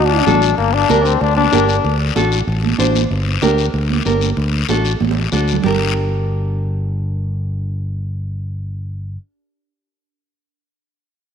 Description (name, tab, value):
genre	latin, cumbia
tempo	190 BPM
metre	4/4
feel	straight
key	G harmonic minor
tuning	A4 = 436 Hz
part	brilliant trombone	second line	0.0-2.0 s	Bb3 to D4	-17 LUFS	left 9 dB	tape echo
part	fingered electric bass	bass	0.0-9.2 s	G1 to D2	-18 LUFS	equal	none
part	nylon-string guitar	accompaniment	0.3-9.2 s	D4 to C5	-20 LUFS	equal	none
part	congas	percussion	0.3-5.7 s	none	-22 LUFS	right 14 dB	none
part	guiro	percussion	0.3-5.7 s	none	-25 LUFS	left 11 dB	none
room	moderate plate reverb, RT60 2.6 s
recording	1960s-style stereo with parts hard left and right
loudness	-14 LUFS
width	side -8 dB against mid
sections	0.6-5.6 A section; 5.6-8.2 B section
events	drum fill 5.0-5.6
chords	0.0 D; 0.6 Gm; 1.8 D7; 3.1 Gm; 4.4 D; 5.6 Gm